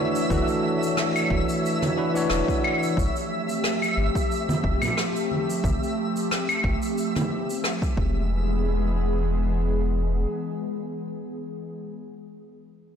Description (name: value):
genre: sunset chillout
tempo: 90 BPM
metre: 4/4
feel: swing 54% on 16ths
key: E mixolydian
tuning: A4 = 443 Hz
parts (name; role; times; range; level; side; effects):
- bell-like tine electric piano; accompaniment; 0.0-3.0 s; E3 to C#5; -25 LUFS; left 1 dB; auto-pan, ping-pong delay
- airy breathy pad; sustained chords; 0.0-11.7 s; E3 to C#5; -28 LUFS; equal; chorus
- twinkling granular texture; texture; 0.0-8.3 s; E5; -32 LUFS; right 1 dB; built-in reverb
- shaker, rim click and claves; drums; 0.2-7.9 s; none; -29 LUFS; left 1 dB; none
- warm sub bass; bass; 0.3-10.3 s; E1 to G1; -25 LUFS; equal; none
- electronic kick drum; drums; 0.3-8.1 s; none; -27 LUFS; equal; none
- congas; percussion; 0.3-7.3 s; none; -30 LUFS; right 2 dB; none
room: moderate lush hall reverb, RT60 1.9 s, studio reverb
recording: blown-out, overdriven recording, overdrive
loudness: -22 LUFS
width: side -8 dB against mid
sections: 0.0-8.3 A section; 8.3-11.0 B section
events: filter sweep on sub bass 0.0-8.3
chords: 0.0 E9sus4; 3.0 G9sus4; 8.0 E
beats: | 0.30 0.97 1.64 2.30 | 2.97 3.64 4.30 4.97 | 5.64 6.30 6.97 7.64 | 8.30 8.97 9.64 10.30